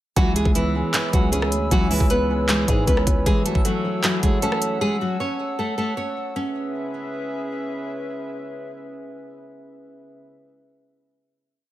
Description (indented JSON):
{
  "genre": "hip hop, trap",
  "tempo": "155 BPM",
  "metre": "4/4",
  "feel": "half-time",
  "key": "C# minor",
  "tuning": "A4 = 440 Hz",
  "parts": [
    { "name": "nylon-string guitar", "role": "melody", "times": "0.2-7.5 s", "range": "E3 to C#5", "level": "-24 LUFS", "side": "left 1 dB", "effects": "none" },
    { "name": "dark concert grand piano", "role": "accompaniment", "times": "0.2-5.4 s", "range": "E3 to C#4", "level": "-26 LUFS", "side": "right 2 dB", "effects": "none" },
    { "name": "dark analog pad", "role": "sustained chords", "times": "0.4-10.2 s", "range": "C#4 to E6", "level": "-31 LUFS", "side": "left 1 dB", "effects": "chorus" },
    { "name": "growling 808-style bass", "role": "bass", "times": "0.2-3.3 s", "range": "C#2 to G#2", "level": "-24 LUFS", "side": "equal", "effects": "none" },
    { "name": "trap drum kit", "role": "drums", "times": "0.2-4.7 s", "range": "handclaps, hi-hat, kick drum, rim click", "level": "-21 LUFS", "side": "equal", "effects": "overdrive" }
  ],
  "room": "light reverb",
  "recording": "none",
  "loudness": "-20 LUFS",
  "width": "side -14 dB against mid",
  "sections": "0.2-6.4 hook; 6.4-9.5 final chord",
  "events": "none",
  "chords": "0.2 C#m7; 3.3 F#m7; 6.4 C#m7",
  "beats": "| 0.17 0.55 0.94 1.33 | 1.71 2.10 2.49 2.88 | 3.26 3.65 4.04 4.42 | 4.81 5.20 5.58 5.97 | 6.36 6.75 7.13 7.52 | 7.91 8.29 8.68 9.07"
}